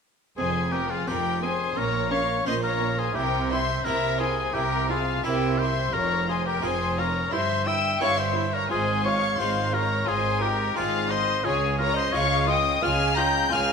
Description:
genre	classical, baroque-style concerto movement with solo episodes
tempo	87 BPM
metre	4/4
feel	straight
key	F minor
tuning	A4 = 440 Hz
part	clear oboe	melody	0.4-13.7 s	E4 to G5	-27 LUFS	left 2 dB	none
part	rich chamber violin section	melody	0.4-13.7 s	E5 to G6	-30 LUFS	left 7 dB	none
part	rich chamber violin section	second line	0.4-13.7 s	G4 to Bb5	-29 LUFS	left 3 dB	none
part	dark chamber viola section	accompaniment	0.4-13.6 s	C4 to F4	-34 LUFS	right 2 dB	none
part	harpsichord	accompaniment	0.4-13.7 s	F2 to F4	-34 LUFS	right 3 dB	none
part	dark chamber cello section	bass	0.4-13.7 s	F2 to Db3	-30 LUFS	right 4 dB	none
part	rich chamber double bass section	bass	0.4-13.7 s	F1 to Db2	-32 LUFS	right 3 dB	none
room	moderate scoring stage reverb, RT60 2.0 s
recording	minimal, uncompressed stereo recording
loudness	-22 LUFS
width	side -6 dB against mid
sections	0.4-13.7 A section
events	none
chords	0.4 F5; 1.8 Bbm; 3.2 C7; 5.9 F5; 7.3 C/G; 8.7 Fm/Ab; 11.4 Db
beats	| 0.38 1.07 1.77 2.46 | 3.16 3.85 4.55 5.25 | 5.94 6.63 7.32 8.01 | 8.70 9.38 10.07 10.76 | 11.44 12.14 12.83 13.52

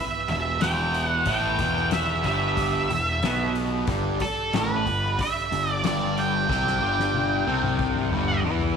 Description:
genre	psychedelic rock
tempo	92 BPM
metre	4/4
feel	straight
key	unclear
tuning	A4 = 438 Hz
part	octave-fuzz lead guitar	melody	0.0-8.4 s	A4 to G5	-26 LUFS	right 3 dB	distortion, slapback echo
part	bright symphonic string section	sustained chords	0.0-8.8 s	D3 to D5	-38 LUFS	right 12 dB	none
part	fuzz guitar	riff	0.3-8.8 s	E2 to E4	-26 LUFS	left 1 dB	distortion, phaser
part	fuzz picked electric bass	bass	0.3-8.8 s	E1 to E2	-29 LUFS	left 1 dB	overdrive
part	soft-mallet drum kit	drums	0.3-8.8 s	hi-hat, kick drum, snare drum, toms	-31 LUFS	left 4 dB	none
room	light reverb, studio ambience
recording	1960s-style stereo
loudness	-22 LUFS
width	side -6 dB against mid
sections	0.0-8.8 A section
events	drum fill 6.5-8.8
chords	0.0 Em; 3.9 G5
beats	0.62 | 1.28 1.93 2.58 3.23 | 3.89 4.54 5.19 5.84 | 6.50 7.15 7.80 8.45

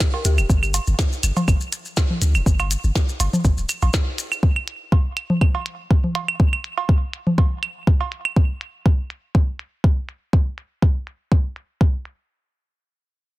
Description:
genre	minimal techno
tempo	122 BPM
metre	4/4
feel	swing 54% on 16ths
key	G minor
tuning	A4 = 439 Hz
part	electronic kick drum	drums	0.0-11.9 s	none	-17 LUFS	equal	none
part	minimal click drum kit	drums	0.0-12.2 s	hi-hat, snare drum	-27 LUFS	equal	soft clipping on snare, low-pass filter on snare, low-pass filter on hats, low-pass filter on room
part	maracas	percussion	0.0-4.4 s	none	-30 LUFS	left 3 dB	none
part	cowbell, claves and congas	percussion	0.1-8.3 s	none	-24 LUFS	right 2 dB	dub echo
part	punchy sub bass	bass	0.2-3.9 s	D1 to D2	-19 LUFS	equal	sidechain pumping
room	digital ambience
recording	dense, heavily limited modern master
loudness	-18 LUFS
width	side -18 dB against mid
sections	0.0-12.3 A section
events	none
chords	none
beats	0.00 | 0.49 0.99 1.48 1.97 | 2.46 2.95 3.45 3.94 | 4.43 4.92 5.41 5.91 | 6.40 6.89 7.38 7.87 | 8.36 8.86 9.35 9.84 | 10.33 10.82 11.31 11.81

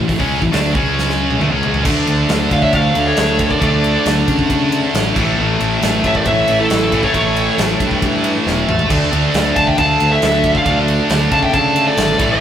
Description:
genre	heavy metal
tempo	136 BPM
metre	4/4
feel	straight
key	unclear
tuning	A4 = 440 Hz
part	heavy high-gain guitar	riff	0.0-12.4 s	A2 to D4	-20 LUFS	right 6 dB	distortion
part	high-gain distorted guitar	riff	0.0-12.4 s	A2 to D4	-19 LUFS	left 4 dB	distortion
part	fuzz picked electric bass	bass	0.0-12.4 s	E1 to C#3	-19 LUFS	right 1 dB	overdrive
part	big rock drum kit	drums	0.1-12.3 s	crash cymbal, hi-hat, kick drum, ride cymbal, snare drum, toms	-21 LUFS	equal	none
part	high-gain lead guitar	melody	2.5-12.4 s	A4 to A5	-17 LUFS	equal	distortion
part	dark smooth lead guitar	second line	2.5-12.4 s	E4 to F5	-24 LUFS	right 5 dB	overdrive
room	moderate stone room reverb, RT60 1.3 s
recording	rough rehearsal-room recording, warm saturation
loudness	-12 LUFS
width	side -9 dB against mid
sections	0.0-1.9 A section; 1.9-12.4 B section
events	drum fill 1.0-1.9, 8.5-8.9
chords	0.0 A; 0.8 C#5; 1.4 A; 1.9 D5; 5.2 A; 8.9 D5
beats	| 0.09 0.53 0.97 1.41 | 1.85 2.29 2.73 3.17 | 3.62 4.06 4.50 4.94 | 5.38 5.82 6.26 6.70 | 7.14 7.58 8.02 8.46 | 8.90 9.34 9.78 10.22 | 10.66 11.10 11.54 11.98

